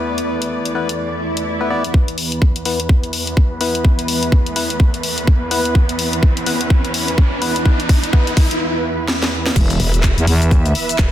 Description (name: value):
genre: bass house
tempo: 126 BPM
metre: 4/4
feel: swing 60% on 16ths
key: unclear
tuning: A4 = 437 Hz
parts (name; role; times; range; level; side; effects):
- muted studio string section; sustained chords; 0.0-11.1 s; E2 to E5; -24 LUFS; right 1 dB; sidechain pumping, low-pass filter
- percussive organ stab; stabs; 0.0-8.3 s; B3 to D5; -24 LUFS; left 3 dB; chorus, sidechain pumping, dub echo
- deep dark ambient pad; texture; 0.0-11.1 s; E4 to B5; -28 LUFS; right 1 dB; chorus, built-in reverb, sidechain pumping
- garage drum kit; drums; 0.2-11.1 s; crash cymbal, handclaps, hi-hat, shaker, snare drum; -21 LUFS; left 2 dB; studio reverb
- swell, riser and impact; sound effects; 1.2-11.1 s; none; -25 LUFS; equal; none
- electronic kick drum; drums; 1.9-11.1 s; none; -13 LUFS; equal; studio reverb
- growling FM bass; bass; 9.6-10.7 s; E1 to E2; -15 LUFS; equal; tube saturation, sidechain pumping
- growl bass; bass; 9.8-11.1 s; E1; -18 LUFS; equal; distortion, chorus, tube saturation, sidechain pumping
room: light reverb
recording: dense, heavily limited modern master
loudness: -14 LUFS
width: side -12 dB against mid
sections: 0.0-1.9 A section; 1.9-9.6 B section; 9.6-11.1 C section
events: swell 1.2-1.9; build-up 1.9-9.6; riser 1.9-8.6; filter sweep on synth stab 1.9-9.6; filter sweep on string section 1.9-9.6; drum fill 5.8-8.6, 9.1-9.6; break 8.6-9.6; drop 9.6-11.1; impact 9.6-11.1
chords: 0.0 E5